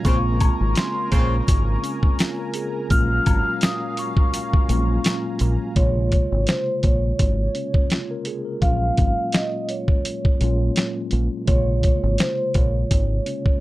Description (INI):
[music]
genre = hip hop, boom-bap hip-hop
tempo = 84 BPM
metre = 4/4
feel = swing 54% on 16ths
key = Bb minor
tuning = A4 = 440 Hz
[part]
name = vibraphone with soft mallets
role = melody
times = 0.0-13.6 s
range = C5 to F6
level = -26 LUFS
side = equal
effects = high-pass filter, low-pass filter
[part]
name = mellow tine electric piano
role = accompaniment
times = 0.0-13.6 s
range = Bb2 to Bb4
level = -27 LUFS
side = left 1 dB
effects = medium stereo tremolo, cassette tape, high-pass filter, low-pass filter
[part]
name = warm analog pad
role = sustained chords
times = 0.0-5.7 s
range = Db3 to Bb5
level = -34 LUFS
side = right 2 dB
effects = chorus, high-pass filter, low-pass filter
[part]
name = boom bap sampler-style drum kit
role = drums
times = 0.0-13.6 s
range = hi-hat, kick drum, snare drum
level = -19 LUFS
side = equal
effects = none
[part]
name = warm horn section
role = stabs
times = 0.1-1.3 s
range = Db3 to F4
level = -31 LUFS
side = right 4 dB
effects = high-pass filter, low-pass filter, tape echo, plate reverb
[part]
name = deep dub fingered electric bass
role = bass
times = 0.1-13.2 s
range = Ab1 to Bb1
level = -21 LUFS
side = equal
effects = none
[part]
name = egg shaker and woodblock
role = percussion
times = 0.1-5.6 s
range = none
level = -35 LUFS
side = left 5 dB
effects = none
[sound]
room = light reverb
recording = dark, warm production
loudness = -18 LUFS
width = side -17 dB against mid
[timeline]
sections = 0.0-5.8 A section; 5.8-13.6 B section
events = none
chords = 0.1 Bbm9; 2.9 Gbmaj9; 5.8 Bbm9; 8.6 Gbmaj9; 11.5 Bbm9